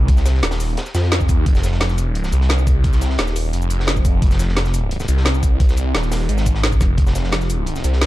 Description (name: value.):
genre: dark technical drum and bass.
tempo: 174 BPM.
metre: 4/4.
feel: straight.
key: F minor.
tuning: A4 = 441 Hz.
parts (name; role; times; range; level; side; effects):
phased detuned saw bass; bass; 0.0-8.1 s; Eb1 to F2; -18 LUFS; equal; phaser, tube saturation.
crunchy breakbeat drum kit; drums; 0.1-8.1 s; hi-hat, snare drum; -31 LUFS; equal; high-pass filter on hats, high-pass filter on snare, high-pass filter on room.
drum and bass drum kit; drums; 0.1-8.1 s; cabasa, hi-hat, snare drum; -23 LUFS; equal; overdrive.
electronic kick drum; drums; 0.1-7.0 s; none; -16 LUFS; equal; overdrive.
room: small room ambience.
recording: dark, warm production.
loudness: -15 LUFS.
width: side -16 dB against mid.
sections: 0.0-8.1 A section.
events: none.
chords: none.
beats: | 0.08 0.43 0.77 1.12 | 1.46 1.81 2.15 2.50 | 2.84 3.19 3.53 3.88 | 4.22 4.57 4.91 5.26 | 5.60 5.95 6.29 6.63 | 6.98 7.33 7.67 8.02.